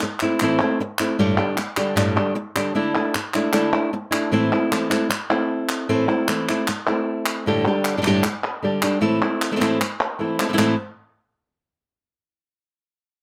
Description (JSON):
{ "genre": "flamenco", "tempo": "153 BPM", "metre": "4/4", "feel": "straight", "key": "A minor", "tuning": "A4 = 440 Hz", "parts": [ { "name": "flamenco guitar", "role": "melody", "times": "0.0-10.7 s", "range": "G2 to G4", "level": "-22 LUFS", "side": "equal", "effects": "none" }, { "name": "palmas hand claps", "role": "percussion", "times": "0.0-10.7 s", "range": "none", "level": "-27 LUFS", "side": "equal", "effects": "none" } ], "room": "light reverb", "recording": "close, detailed microphones", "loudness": "-21 LUFS", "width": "mono", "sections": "0.0-10.6 A section; 10.6-12.1 B section", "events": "none", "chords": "0.0 Am; 1.2 Gsus2; 2.8 Dsus2; 4.3 Am; 7.5 Gsus2; 9.0 Am; 10.6 N.C." }